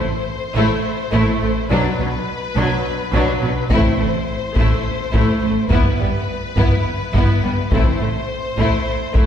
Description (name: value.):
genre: cinematic, epic orchestral film score.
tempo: 210 BPM (eighths).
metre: 7/8.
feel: straight.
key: A dorian.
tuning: A4 = 440 Hz.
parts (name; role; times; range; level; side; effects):
warm symphonic violin section; melody; 0.0-9.3 s; B4 to C5; -26 LUFS; left 4 dB; none.
warm symphonic violin section; second line; 0.0-9.3 s; G3 to E4; -25 LUFS; left 3 dB; none.
rich symphonic viola section; accompaniment; 0.0-9.3 s; F#3 to B3; -24 LUFS; right 1 dB; none.
rich symphonic cello section; bass; 0.0-9.2 s; G2 to B2; -23 LUFS; right 2 dB; none.
rich symphonic double bass section; bass; 0.0-9.2 s; G1 to B1; -23 LUFS; right 2 dB; none.
timpani; percussion; 0.0-0.5, 3.7-4.5 s; A2; -29 LUFS; left 1 dB; none.
dark French horn section; sustained chords; 1.7-7.9 s; E3 to D4; -29 LUFS; left 3 dB; none.
taiko ensemble; drums; 3.7-9.3 s; none; -20 LUFS; equal; none.
room: wet scoring stage reverb, RT60 1.9 s.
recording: heard from further back in the room.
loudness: -16 LUFS.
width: side -9 dB against mid.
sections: 0.0-9.3 A section.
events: build-up 0.0-9.3.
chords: 0.0 Am; 1.7 Bm; 3.7 Am; 5.7 Em/G; 7.7 Am.